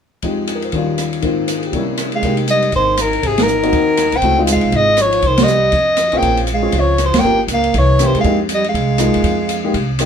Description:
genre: jazz, small-group swing and bop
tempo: 240 BPM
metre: 4/4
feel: swing 60% on 8ths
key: F minor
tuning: A4 = 440 Hz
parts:
  - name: warm baby grand piano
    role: accompaniment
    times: 0.2-10.1 s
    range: Eb2 to C5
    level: -19 LUFS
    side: left 3 dB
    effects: none
  - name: open jazz drum kit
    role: drums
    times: 0.2-10.1 s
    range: hi-hat, kick drum, ride cymbal, rim click, snare drum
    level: -21 LUFS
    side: equal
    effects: none
  - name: breathy trombone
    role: second line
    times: 2.1-10.0 s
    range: C3 to C4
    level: -20 LUFS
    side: right 4 dB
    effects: none
  - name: warm soprano saxophone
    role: melody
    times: 2.2-10.0 s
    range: Ab4 to G5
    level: -16 LUFS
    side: left 1 dB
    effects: none
  - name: upright bass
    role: bass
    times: 2.2-10.1 s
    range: F1 to F2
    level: -20 LUFS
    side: equal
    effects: none
room: moderate club reverb, RT60 0.5 s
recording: minimal, uncompressed stereo recording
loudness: -13 LUFS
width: side -7 dB against mid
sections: 0.2-2.2 A section; 2.2-10.1 B section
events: band accent 3.4, 5.4, 7.1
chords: 0.2 Fm9; 0.7 Eb9; 1.2 Ab69; 1.7 C7b9; 2.2 Fm11; 3.2 Ab9; 4.2 Dbmaj9; 5.2 Cm; 5.7 Fm7; 6.2 Bbm9; 7.2 Gm7b5; 7.7 C7b9; 8.2 Fm11

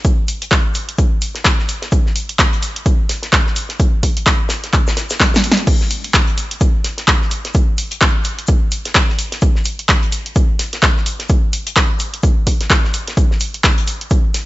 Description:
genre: house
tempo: 128 BPM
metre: 4/4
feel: swing 58% on 16ths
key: none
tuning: none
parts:
  - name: damped 70s drum kit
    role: drums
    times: 0.0-14.5 s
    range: hi-hat, shaker, snare drum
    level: -26 LUFS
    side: left 2 dB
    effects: sidechain pumping on hats, high-pass filter on hats, studio reverb, high-pass filter on snare, sidechain pumping on perc, high-pass filter on perc, high-pass filter on room
  - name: electronic kick drum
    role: drums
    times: 0.0-14.2 s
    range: none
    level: -15 LUFS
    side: equal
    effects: overdrive, studio reverb
  - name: punchy analog drum machine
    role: drums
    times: 0.0-14.5 s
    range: crash cymbal, handclaps, hi-hat, snare drum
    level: -17 LUFS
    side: equal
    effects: overdrive, studio reverb
room: small room reverb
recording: nothing above 7.8 kHz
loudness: -13 LUFS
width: side -18 dB against mid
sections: 0.0-14.5 A section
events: drum fill 5.2-5.7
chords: none

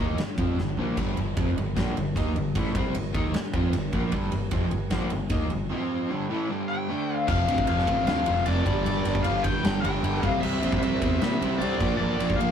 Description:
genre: hard rock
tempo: 152 BPM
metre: 4/4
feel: straight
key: G minor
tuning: A4 = 439 Hz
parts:
  - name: overdriven semi-hollow guitar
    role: riff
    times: 0.0-12.5 s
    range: F2 to F4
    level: -31 LUFS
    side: left 2 dB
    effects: tremolo
  - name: overdriven semi-hollow guitar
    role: riff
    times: 0.0-12.5 s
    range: F2 to F4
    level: -30 LUFS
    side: right 4 dB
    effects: none
  - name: fingered electric bass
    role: bass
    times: 0.0-12.5 s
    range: F1 to Bb2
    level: -29 LUFS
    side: equal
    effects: none
  - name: big rock drum kit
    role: drums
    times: 0.2-12.5 s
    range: crash cymbal, kick drum, ride cymbal, snare drum, toms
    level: -29 LUFS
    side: equal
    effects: none
  - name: nasal lead guitar with a parked wah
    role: melody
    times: 6.7-12.5 s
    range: D5 to G5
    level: -28 LUFS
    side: left 3 dB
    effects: overdrive
  - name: heavy high-gain guitar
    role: riff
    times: 7.3-12.5 s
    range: F2 to C4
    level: -37 LUFS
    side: left 1 dB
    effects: distortion
room: wet booth ambience, RT60 0.2 s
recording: rough rehearsal-room recording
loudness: -23 LUFS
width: side -8 dB against mid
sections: 0.0-7.3 A section; 7.3-12.5 B section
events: drum fill 0.6-1.0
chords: 0.0 Gm; 5.7 F5; 6.1 G5; 6.9 D5; 7.3 F5; 8.7 G5; 10.2 C; 11.8 Bb

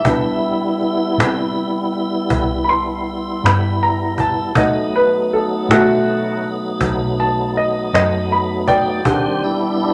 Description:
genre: slow blues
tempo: 53 BPM (dotted quarters)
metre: 12/8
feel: straight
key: unclear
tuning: A4 = 439 Hz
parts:
  - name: clear upright piano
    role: accompaniment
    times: 0.0-9.9 s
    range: G3 to C6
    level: -20 LUFS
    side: equal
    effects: none
  - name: tonewheel organ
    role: sustained chords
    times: 0.0-9.9 s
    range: D#3 to G4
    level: -23 LUFS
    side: equal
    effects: slow rotary speaker, overdrive, chorus vibrato
  - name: vintage muted fingered electric bass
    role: bass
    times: 0.0-9.9 s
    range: B1 to C3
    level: -25 LUFS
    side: equal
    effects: none
  - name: cajon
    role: drums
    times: 0.0-9.9 s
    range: none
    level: -23 LUFS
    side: equal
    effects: none
room: wet large studio reverb, RT60 1.4 s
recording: none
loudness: -18 LUFS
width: mono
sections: 0.0-9.9 A section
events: upright piano solo 0.0-9.9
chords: 0.1 Cmaj7; 4.6 B7; 9.1 Em7

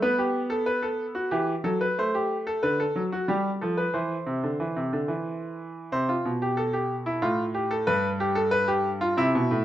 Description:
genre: classical, baroque-style two-part invention for grand piano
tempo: 92 BPM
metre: 3/4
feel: straight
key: C major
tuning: A4 = 440 Hz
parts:
  - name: bright concert grand piano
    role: solo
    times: 0.0-9.6 s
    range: G2 to C5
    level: -24 LUFS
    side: equal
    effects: none
room: moderate large studio reverb, RT60 1.4 s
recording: dark, warm production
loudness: -24 LUFS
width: side -12 dB against mid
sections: 0.0-5.9 A section; 5.9-9.6 B section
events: none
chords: 0.0 B5; 1.3 Em; 2.0 Am; 2.6 D; 3.3 G; 3.9 C; 7.2 F/A; 7.9 G7

